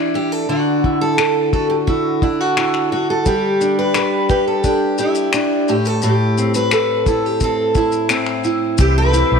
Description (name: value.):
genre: acoustic pop.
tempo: 87 BPM.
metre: 4/4.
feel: straight.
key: unclear.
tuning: A4 = 440 Hz.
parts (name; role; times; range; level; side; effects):
picked steel-string acoustic guitar; melody; 0.0-9.4 s; D4 to B4; -19 LUFS; left 1 dB; none.
nylon-string guitar; accompaniment; 0.0-9.4 s; A2 to B4; -17 LUFS; right 1 dB; none.
cloth-damped thuddy drum kit; drums; 0.8-9.3 s; finger snaps, kick drum, shaker; -21 LUFS; left 2 dB; none.
overdriven tonewheel organ; sustained chords; 8.8-9.4 s; E3 to G4; -22 LUFS; equal; chorus vibrato, slow rotary speaker.
vintage muted fingered electric bass; bass; 8.8-9.4 s; B1 to C2; -15 LUFS; equal; none.
room: light reverb, small room ambience.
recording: 1960s-style stereo.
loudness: -14 LUFS.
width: side -6 dB against mid.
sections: 0.0-8.8 A section.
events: none.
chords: 0.5 Dadd9; 3.3 G; 5.7 Am; 8.8 C.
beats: | 0.49 1.19 1.88 2.57 | 3.26 3.95 4.64 5.34 | 6.03 6.72 7.41 8.10 | 8.79.